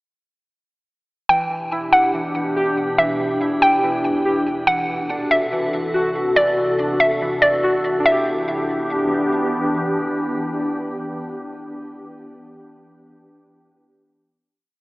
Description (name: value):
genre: hip hop, atmospheric cloud-rap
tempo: 142 BPM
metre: 4/4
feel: half-time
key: E minor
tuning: A4 = 440 Hz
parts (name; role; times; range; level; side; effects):
- hollow square pluck; melody; 1.3-9.3 s; D5 to G5; -19 LUFS; equal; chorus, low-pass filter, digital delay
- glassy FM pad; sustained chords; 1.8-12.0 s; E2 to A4; -22 LUFS; equal; ensemble chorus, built-in reverb
- warbly lo-fi synth keys; arpeggios; 1.3-12.0 s; E3 to G4; -25 LUFS; equal; chorus, low-pass filter, digital delay
room: wet lush hall reverb, RT60 3.0 s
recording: AM radio sound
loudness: -17 LUFS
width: side -22 dB against mid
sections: 1.3-8.1 breakdown; 8.1-11.4 final chord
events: none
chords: 1.3 Em7; 4.7 D7/E; 8.1 Em7